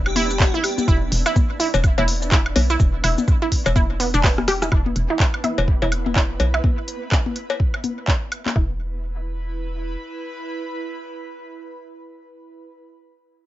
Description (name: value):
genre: minimal techno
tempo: 125 BPM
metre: 4/4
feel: swing 59% on 16ths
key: unclear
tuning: A4 = 439 Hz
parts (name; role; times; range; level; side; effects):
- hollow knocking FM bass; bass; 0.0-10.0 s; E1 to B1; -23 LUFS; equal; sidechain pumping
- flickering grainy texture; texture; 0.0-8.6 s; B3 to B4; -34 LUFS; right 1 dB; built-in reverb, sidechain pumping
- airy dreamy lead; melody; 0.1-0.8 s; G4; -26 LUFS; equal; chorus, digital delay
- electronic woodblock, toms and cowbell; percussion; 0.1-8.5 s; none; -24 LUFS; left 5 dB; digital delay
- resonant blip pluck; riff; 0.2-8.8 s; B3 to G4; -25 LUFS; right 2 dB; chorus, sidechain pumping, dub echo
- minimal click drum kit; drums; 0.2-8.5 s; handclaps, hi-hat, rim click, shaker; -24 LUFS; equal; none
- electronic kick drum; drums; 0.4-8.7 s; none; -18 LUFS; equal; none
- airy breathy pad; texture; 4.7-12.8 s; E4 to B5; -35 LUFS; right 3 dB; chorus, sidechain pumping
room: light reverb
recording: nothing above 7.6 kHz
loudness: -18 LUFS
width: side -14 dB against mid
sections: 0.0-4.7 A section; 4.7-8.6 B section; 8.6-12.4 C section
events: drop 0.0-4.7; drum fill 4.2-4.7; fade-out on analog synth pad 4.7-8.6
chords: 0.0 E5